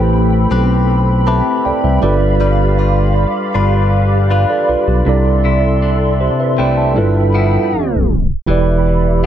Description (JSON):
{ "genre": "contemporary R&B", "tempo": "79 BPM", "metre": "4/4", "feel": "straight", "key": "unclear", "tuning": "A4 = 440 Hz", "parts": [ { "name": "mellow tine electric piano", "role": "accompaniment", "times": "0.0-9.3 s", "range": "C3 to A5", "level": "-17 LUFS", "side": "right 4 dB", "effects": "fast stereo tremolo" }, { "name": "hollow soft pad", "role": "sustained chords", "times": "0.0-9.3 s", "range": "C4 to C6", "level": "-20 LUFS", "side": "equal", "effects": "ensemble chorus" }, { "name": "direct-recorded clean electric guitar", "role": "arpeggios", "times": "0.0-9.3 s", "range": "G2 to B4", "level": "-20 LUFS", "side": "left 7 dB", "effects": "phaser, tape echo" }, { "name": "smooth synth bass", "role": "bass", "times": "0.0-9.3 s", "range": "E1 to C2", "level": "-14 LUFS", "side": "equal", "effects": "none" } ], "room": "light reverb", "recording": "tape stop", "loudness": "-11 LUFS", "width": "side -10 dB against mid", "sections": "0.0-8.5 A section", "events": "tine electric piano fill 0.9-2.4; tape stop 7.7-8.5", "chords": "0.0 Am9; 2.0 G7; 5.1 C69; 7.0 G13; 8.5 Em7", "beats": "0.13 0.89 1.65 | 2.40 3.16 3.92 4.68 | 5.44 6.20 6.96 7.72 | 8.48 9.24" }